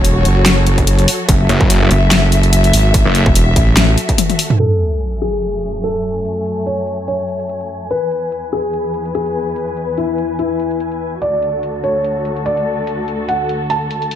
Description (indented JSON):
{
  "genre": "heavy wobble dubstep",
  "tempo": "145 BPM",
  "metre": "4/4",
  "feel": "swing 55% on 16ths, half-time",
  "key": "F# minor",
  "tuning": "A4 = 440 Hz",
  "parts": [
    { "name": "dark studio string section", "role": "sustained chords", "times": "0.0-14.2 s", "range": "D2 to G#5", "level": "-21 LUFS", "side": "left 2 dB", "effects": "sidechain pumping, low-pass filter" },
    { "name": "wobble bass", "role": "bass", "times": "0.0-4.0 s", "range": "E1 to A1", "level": "-12 LUFS", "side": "equal", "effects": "chorus, overdrive" },
    { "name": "dubstep drum kit", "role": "drums", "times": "0.0-14.2 s", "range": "crash cymbal, handclaps, hi-hat, snare drum, toms", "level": "-16 LUFS", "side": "left 1 dB", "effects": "studio reverb" },
    { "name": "electronic kick drum", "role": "drums", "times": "0.8-4.2 s", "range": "none", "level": "-15 LUFS", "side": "equal", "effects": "distortion, studio reverb" },
    { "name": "snarling distorted saw bass", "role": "bass", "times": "1.5-3.2 s", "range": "F#1", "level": "-13 LUFS", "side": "equal", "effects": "overdrive" },
    { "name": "dark concert grand piano", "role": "melody", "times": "4.6-14.2 s", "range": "E4 to A5", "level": "-19 LUFS", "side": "left 1 dB", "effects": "ping-pong delay" },
    { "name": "sub drop", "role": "sound effects", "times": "4.6-6.3 s", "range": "none", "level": "-20 LUFS", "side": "right 1 dB", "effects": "none" }
  ],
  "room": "light reverb, digital ambience",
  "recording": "low-pass filter",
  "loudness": "-13 LUFS",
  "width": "side -10 dB against mid",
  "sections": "0.0-4.6 A section; 4.6-14.2 B section",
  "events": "drop 0.0-4.6; drum fill 4.2-4.6; impact 4.6-6.3; filter sweep on string section 4.6-14.2; filter sweep 4.6-14.2",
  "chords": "0.0 F#m; 4.6 F#madd9; 7.9 E; 11.2 D"
}